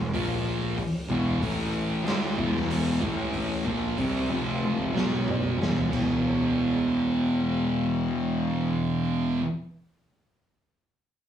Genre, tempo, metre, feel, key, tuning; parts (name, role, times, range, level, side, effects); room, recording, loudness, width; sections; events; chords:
stoner and doom metal; 93 BPM; 4/4; straight; A4 = 440 Hz
thick fuzz guitar; riff; 0.0-9.5 s; E2 to D4; -31 LUFS; left 7 dB; distortion
thick fuzz guitar; riff; 0.0-9.4 s; E2 to D4; -27 LUFS; right 3 dB; distortion
fuzz picked electric bass; bass; 0.0-9.2 s; E1 to D2; -33 LUFS; left 1 dB; overdrive
raw garage drum kit; drums; 0.1-6.1 s; crash cymbal, hi-hat, kick drum, snare drum, toms; -31 LUFS; equal
light reverb; rough rehearsal-room recording, studio reverb; -24 LUFS; side -10 dB against mid
0.0-5.9 A section; 5.9-8.5 B section
drum fill 4.6-5.9
0.1 A#5; 1.1 E5; 1.4 A5; 2.1 E5; 3.0 A5; 3.7 Fsus24/Bb; 4.3 F5; 4.9 B5; 5.6 E5